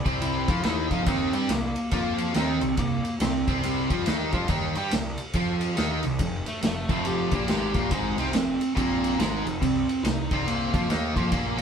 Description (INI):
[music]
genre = blues rock power trio and southern rock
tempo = 140 BPM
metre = 4/4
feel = swing 63% on 8ths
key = unclear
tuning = A4 = 442 Hz
[part]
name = overdriven slide guitar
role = melody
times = 0.0-11.6 s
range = G3 to G4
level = -29 LUFS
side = right 2 dB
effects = none
[part]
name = fuzz picked electric bass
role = bass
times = 0.0-11.6 s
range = F1 to Bb2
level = -31 LUFS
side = equal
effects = overdrive
[part]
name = cranked stack guitar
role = riff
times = 0.1-11.6 s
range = F2 to Bb4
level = -28 LUFS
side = equal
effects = overdrive
[part]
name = vintage drum kit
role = drums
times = 0.1-11.6 s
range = kick drum, ride cymbal, snare drum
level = -28 LUFS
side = equal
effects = none
[sound]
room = moderate studio reverb, RT60 0.5 s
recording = band playing live in one room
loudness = -23 LUFS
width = side -7 dB against mid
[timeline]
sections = 0.0-11.6 A section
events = none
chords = 0.0 C7(no3); 6.2 F7(no3); 9.6 C5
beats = 0.21 0.64 | 1.07 1.50 1.92 2.35 | 2.78 3.21 3.63 4.06 | 4.49 4.92 5.34 5.77 | 6.20 6.63 7.05 7.48 | 7.91 8.33 8.76 9.19 | 9.61 10.04 10.47 10.89 | 11.32